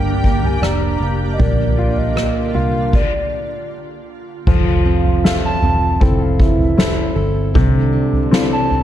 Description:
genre	pop ballad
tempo	78 BPM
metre	4/4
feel	straight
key	F major from 4.5 s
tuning	A4 = 440 Hz
part	hollow clarinet-like synth lead	melody	0.0-8.8 s	D5 to Bb5	-23 LUFS	equal	chorus, digital delay
part	clear grand piano	accompaniment	0.0-8.8 s	C3 to E5	-22 LUFS	left 5 dB	none
part	shimmering ambient pad	sustained chords	0.0-2.9 s	D3 to G4	-26 LUFS	right 1 dB	chorus, built-in reverb
part	fingerpicked plugged-in steel-string acoustic guitar	arpeggios	0.0-8.8 s	G2 to Bb4	-24 LUFS	right 3 dB	digital delay
part	vintage muted fingered electric bass	bass	0.0-8.8 s	E1 to C2	-20 LUFS	equal	none
part	soft-mallet drum kit	drums	0.2-8.8 s	crash cymbal, kick drum, rim click, snare drum, toms	-17 LUFS	equal	none
part	dark French horn section	second line	4.5-8.8 s	D3 to F4	-23 LUFS	right 4 dB	none
room	studio ambience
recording	dark, warm production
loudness	-14 LUFS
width	side -11 dB against mid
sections	0.0-4.5 A section; 4.5-8.8 B section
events	stop 2.9-4.5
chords	0.0 Gm; 1.4 Bb; 4.5 Fmaj7; 7.5 C6

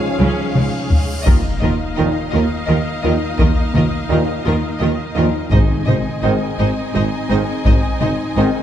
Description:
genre	cinematic, epic orchestral film score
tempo	56 BPM (dotted quarters)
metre	6/8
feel	straight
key	unclear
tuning	A4 = 441 Hz
part	rich studio violin section	melody	0.0-8.4 s	Eb5 to F5	-29 LUFS	left 5 dB	none
part	rich symphonic violin section	second line	0.0-8.5 s	Ab4 to C5	-28 LUFS	left 2 dB	none
part	clear trombone section	sustained chords	0.0-8.5 s	Ab2 to F3	-26 LUFS	right 3 dB	none
part	mellow French horn section	sustained chords	0.0-8.5 s	F3 to Eb4	-25 LUFS	left 5 dB	none
part	rich symphonic string section	sustained chords	0.0-8.6 s	Ab3 to Ab5	-25 LUFS	left 1 dB	none
part	cymbal swell and impact	sound effects	0.5-3.4 s	none	-28 LUFS	left 1 dB	none
part	clear symphonic viola section	accompaniment	0.2-8.4 s	Ab3 to F4	-29 LUFS	equal	none
part	dark tuba	bass	0.2-8.5 s	Ab1 to Eb2	-24 LUFS	right 3 dB	none
part	rich symphonic cello section	bass	0.2-8.4 s	Ab2 to Eb3	-23 LUFS	right 3 dB	none
part	rich symphonic double bass section	bass	0.2-8.4 s	Ab1 to Eb2	-22 LUFS	right 2 dB	none
part	taiko ensemble	drums	0.2-8.3 s	none	-17 LUFS	left 1 dB	none
part	timpani	percussion	5.5-6.6 s	Ab2	-23 LUFS	equal	none
room	moderate scoring stage reverb, RT60 1.5 s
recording	dark, warm production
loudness	-15 LUFS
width	side -10 dB against mid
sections	0.0-1.3 A section; 1.3-8.6 B section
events	drum fill 0.2-1.3; cymbal swell 0.5-1.3; impact 1.3-3.4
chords	0.0 Db; 1.3 Ebsus2; 5.5 Ab

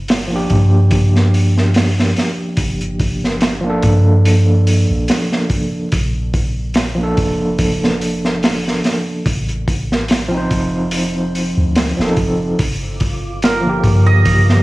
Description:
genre	trip hop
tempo	72 BPM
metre	4/4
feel	swing 55% on 16ths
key	G minor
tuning	A4 = 439 Hz
part	soft 808-style bass	bass	0.0-14.6 s	F1 to G2	-16 LUFS	equal	none
part	crunchy breakbeat drum kit	drums	0.1-14.6 s	hi-hat, kick drum, snare drum	-18 LUFS	equal	none
part	overdriven tine electric piano	accompaniment	0.3-14.6 s	D3 to C5	-19 LUFS	right 1 dB	medium tremolo, tape echo
part	flickering grainy texture	texture	12.8-14.6 s	F4 to D6	-30 LUFS	right 1 dB	built-in reverb
part	hammered dulcimer	melody	13.4-14.6 s	Bb4 to Eb5	-18 LUFS	right 3 dB	vintage 12-bit sampler grit
room	studio ambience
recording	vinyl crackle, studio reverb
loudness	-13 LUFS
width	side -20 dB against mid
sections	0.0-14.6 A section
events	none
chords	0.0 Gm7; 5.9 Bbmaj7; 9.3 F7; 12.6 Gm7

